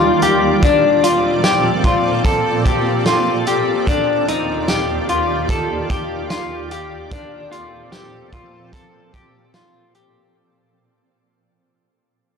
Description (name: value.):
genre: dream pop.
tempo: 74 BPM.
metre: 4/4.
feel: straight.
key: unclear.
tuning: A4 = 440 Hz.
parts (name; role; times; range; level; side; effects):
shimmering ambient pad; sustained chords; 0.0-10.3 s; Eb2 to D5; -20 LUFS; right 3 dB; chorus, built-in reverb.
clean electric guitar; arpeggios; 0.0-10.4 s; D4 to A4; -17 LUFS; left 4 dB; lush chorus, tape echo.
vintage drum kit; drums; 0.2-10.1 s; hi-hat, kick drum, snare drum, tambourine; -20 LUFS; right 1 dB; none.
room: light reverb, small room ambience.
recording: dry, gritty hardware recording.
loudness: -14 LUFS.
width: side -6 dB against mid.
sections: 0.0-10.4 A section.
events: fade-out 0.0-10.4.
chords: 0.0 Ebmaj7; 0.6 Bbmaj7; 3.9 Ebmaj7; 7.1 Bbmaj7.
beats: | 0.63 1.44 2.25 3.06 | 3.87 4.68 5.49 6.30 | 7.12 7.92 8.74 9.55.